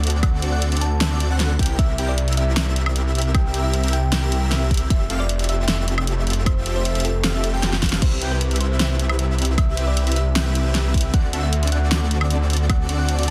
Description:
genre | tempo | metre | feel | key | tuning
future bass | 154 BPM | 4/4 | half-time | C major | A4 = 440 Hz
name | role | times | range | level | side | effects
thumb-piano-like synth pluck | melody | 0.0-13.3 s | A4 to A5 | -34 LUFS | equal | subtle chorus, sidechain pumping, tape echo
airy dreamy lead | arpeggios | 0.0-13.3 s | D5 to G5 | -36 LUFS | equal | chorus, sidechain pumping
supersaw chords | riff | 0.0-13.3 s | C4 to G5 | -31 LUFS | equal | analog chorus, sidechain pumping
detuned saw bass | bass | 0.0-13.3 s | F1 to D2 | -23 LUFS | equal | chorus, sidechain pumping
pop drum kit | drums | 0.0-13.3 s | crash cymbal, hi-hat, snare drum, woodblock | -27 LUFS | equal | none
electronic kick drum | drums | 0.2-12.8 s | none | -22 LUFS | equal | none
room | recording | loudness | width
light reverb | dense, heavily limited modern master | -20 LUFS | mono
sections
0.0-13.3 A section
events
drum fill 7.6-8.0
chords
0.0 D7; 1.6 C7; 4.9 Fmaj9; 8.0 Cmaj7; 11.1 D7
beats
| 0.23 0.62 1.01 1.40 | 1.79 2.18 2.57 2.96 | 3.35 3.74 4.12 4.51 | 4.90 5.29 5.68 6.07 | 6.46 6.85 7.24 7.63 | 8.02 8.41 8.80 9.19 | 9.58 9.97 10.36 10.75 | 11.14 11.53 11.92 12.31 | 12.70 13.09

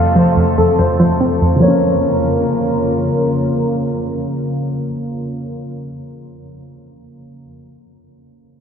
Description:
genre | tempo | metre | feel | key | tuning
hip hop | 144 BPM | 4/4 | half-time | Bb harmonic minor | A4 = 439 Hz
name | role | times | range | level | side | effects
dark baby grand piano | melody | 0.0-2.8 s | A4 to F5 | -19 LUFS | equal | low-pass filter, ping-pong delay
soft round pluck | accompaniment | 0.0-6.4 s | F2 to Db4 | -17 LUFS | equal | chorus, low-pass filter
dark studio string section | sustained chords | 0.0-5.7 s | C3 to Bb4 | -20 LUFS | left 1 dB | none
room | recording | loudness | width
wet cathedral reverb, RT60 6.7 s | dreamy mix soaked in reverb, low-pass filter | -13 LUFS | side -7 dB against mid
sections
0.0-1.6 A section; 1.6-5.0 B section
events
filter sweep 0.0-1.6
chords
0.0 F; 1.6 Bbm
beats
0.37 0.79 1.20 | 1.62 2.04 2.45 2.87 | 3.29 3.70 4.12 4.54

